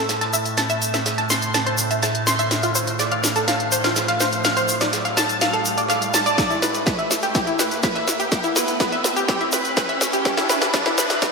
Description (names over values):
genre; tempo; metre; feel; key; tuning
melodic techno; 124 BPM; 4/4; straight; A minor; A4 = 441 Hz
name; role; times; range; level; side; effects
analog pluck; arpeggios; 0.0-11.1 s; E4 to C6; -21 LUFS; equal; wide subtle chorus, sidechain pumping, ping-pong delay
overtone-sweeping drone; drone; 0.0-11.3 s; A2; -28 LUFS; right 2 dB; chorus, built-in reverb, sidechain pumping
riser; sound effects; 0.9-11.3 s; none; -31 LUFS; equal; none
modern studio drum kit; drums; 0.1-11.3 s; hi-hat, snare drum; -32 LUFS; right 2 dB; none
techno drum kit; drums; 0.1-11.3 s; hi-hat, snare drum, toms; -24 LUFS; equal; overdrive, high-pass filter on snare, sidechain pumping on hats, high-pass filter on hats, sidechain pumping on toms, high-pass filter on toms
egg shaker; percussion; 0.1-11.3 s; none; -28 LUFS; left 2 dB; none
electronic kick drum; drums; 6.4-11.3 s; none; -25 LUFS; equal; overdrive
room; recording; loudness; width
wet lush hall reverb, RT60 2.0 s; bright 1980s-style digital production, high-pass filter; -18 LUFS; side -4 dB against mid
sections
0.0-11.3 A section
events
build-up 0.0-11.3; drum fill 0.0-11.3; riser 0.9-11.3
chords
0.0 Am; 2.5 F; 6.4 E5; 10.3 Asus2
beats
0.09 | 0.58 1.06 1.54 2.03 | 2.51 3.00 3.48 3.96 | 4.45 4.93 5.42 5.90 | 6.38 6.87 7.35 7.83 | 8.32 8.80 9.29 9.77 | 10.25 10.74 11.22